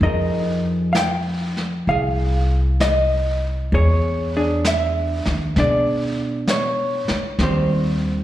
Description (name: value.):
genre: jazz ballad.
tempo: 65 BPM.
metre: 4/4.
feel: swing 68% on 8ths.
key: unclear.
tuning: A4 = 440 Hz.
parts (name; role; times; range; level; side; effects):
vintage hollow-body jazz guitar; accompaniment; 0.0-8.2 s; Eb3 to G5; -21 LUFS; equal; plate reverb, slapback echo.
upright bass; bass; 0.0-8.2 s; C2 to B2; -21 LUFS; equal; none.
vintage brush drum kit; drums; 0.0-8.2 s; brushed snare drum, hi-hat, snare drum; -27 LUFS; equal; slapback echo.
room: moderate club reverb, RT60 0.8 s.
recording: live gig heard through the venue's PA, recital hall reverb.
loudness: -18 LUFS.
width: side -13 dB against mid.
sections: 0.0-8.2 A section.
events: none.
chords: 0.0 Fm11; 3.7 E6; 7.4 Eb6.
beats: | 0.02 0.95 1.88 2.80 | 3.72 4.64 5.56 6.48 | 7.39.